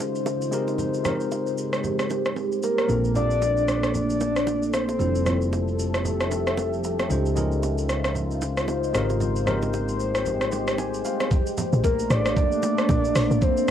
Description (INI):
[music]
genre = amapiano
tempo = 114 BPM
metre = 4/4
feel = swing 58% on 16ths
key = unclear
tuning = A4 = 440 Hz
[part]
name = tine electric piano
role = accompaniment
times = 0.0-11.3 s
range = G3 to C6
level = -30 LUFS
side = left 1 dB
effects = medium stereo tremolo
[part]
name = deep dark ambient pad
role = sustained chords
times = 0.0-13.7 s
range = Db3 to E5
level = -27 LUFS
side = equal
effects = chorus, built-in reverb, sidechain pumping
[part]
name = bongos and congas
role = percussion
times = 0.0-13.7 s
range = none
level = -33 LUFS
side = right 4 dB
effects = none
[part]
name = smooth R&B drum kit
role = drums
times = 0.1-13.7 s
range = hi-hat, kick drum, rim click, shaker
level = -27 LUFS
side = equal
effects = cassette tape
[part]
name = soft octave-layered synth lead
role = melody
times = 2.6-5.7, 11.8-13.7 s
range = Bb4 to D5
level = -25 LUFS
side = equal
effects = chorus, phaser, tape echo
[part]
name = hollow-body short-scale fingered electric bass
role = bass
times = 2.9-11.0 s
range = F1 to Db2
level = -28 LUFS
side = equal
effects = none
[part]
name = tight log drum bass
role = bass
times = 11.7-13.4 s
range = A1 to Bb1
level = -23 LUFS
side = equal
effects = none
[sound]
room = light reverb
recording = home recording on cassette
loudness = -21 LUFS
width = side -10 dB against mid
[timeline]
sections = 0.0-11.3 A section; 11.3-13.7 B section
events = tine electric piano fill 10.3-11.3; drop 11.3-13.7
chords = 0.0 Dbmaj9; 0.5 Abmaj9; 2.9 Bbmaj9; 5.0 Fmaj9; 7.1 Dbmaj9; 8.9 Abmaj9; 11.3 Bbmaj7